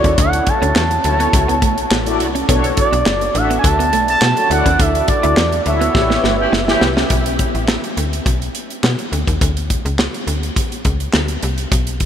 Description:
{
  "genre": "early-eighties boogie funk",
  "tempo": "104 BPM",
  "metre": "4/4",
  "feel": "straight",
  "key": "B minor",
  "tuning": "A4 = 440 Hz",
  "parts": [
    { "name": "expressive synth lead", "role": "melody", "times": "0.0-6.8 s", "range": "D5 to A5", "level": "-18 LUFS", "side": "right 2 dB", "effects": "chorus, ping-pong delay" },
    { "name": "mellow synth brass", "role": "accompaniment", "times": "0.0-6.9 s", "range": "D4 to E5", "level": "-21 LUFS", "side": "left 2 dB", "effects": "chorus" },
    { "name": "semi-hollow electric guitar", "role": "riff", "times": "0.0-7.1 s", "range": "A3 to E4", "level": "-25 LUFS", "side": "right 4 dB", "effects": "analog chorus" },
    { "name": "slap-like FM bass", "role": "bass", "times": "0.0-12.1 s", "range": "F#1 to B2", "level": "-20 LUFS", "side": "left 1 dB", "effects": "none" },
    { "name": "modern studio drum kit", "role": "drums", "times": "0.0-12.1 s", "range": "handclaps, hi-hat, kick drum, snare drum", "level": "-18 LUFS", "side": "equal", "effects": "none" },
    { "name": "mellow horn section", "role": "second line", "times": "6.4-6.9 s", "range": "C#4 to G4", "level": "-25 LUFS", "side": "equal", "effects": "ping-pong delay" }
  ],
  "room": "moderate huge ambient reverb, RT60 5.3 s",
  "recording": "dreamy mix soaked in reverb",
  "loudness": "-13 LUFS",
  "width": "side -9 dB against mid",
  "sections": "0.0-7.1 A section; 7.1-12.1 B section",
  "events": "band accent 4.8-7.1; drum fill 5.9-7.1",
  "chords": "0.0 Dmaj7; 2.5 Bm9; 4.5 Dmaj7; 5.9 A9; 7.1 Bm7; 9.1 N.C."
}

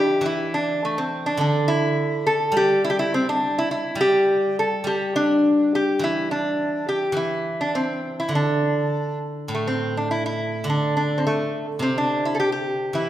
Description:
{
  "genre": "chinese traditional, Chinese chamber ensemble",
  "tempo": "104 BPM",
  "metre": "2/4",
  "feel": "rubato",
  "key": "D shang mode",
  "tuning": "A4 = 441 Hz",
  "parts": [
    { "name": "lap resonator guitar", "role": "melody", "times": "0.0-13.1 s", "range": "A3 to A4", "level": "-21 LUFS", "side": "equal", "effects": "none" },
    { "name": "steel-string zither", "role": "accompaniment", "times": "0.0-13.1 s", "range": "A2 to G3", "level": "-27 LUFS", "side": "right 2 dB", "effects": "none" }
  ],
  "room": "wet recital hall reverb, RT60 1.9 s",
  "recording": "none",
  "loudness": "-20 LUFS",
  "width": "side -12 dB against mid",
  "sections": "0.2-9.5 A section; 9.5-13.1 B section",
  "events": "none",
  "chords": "none"
}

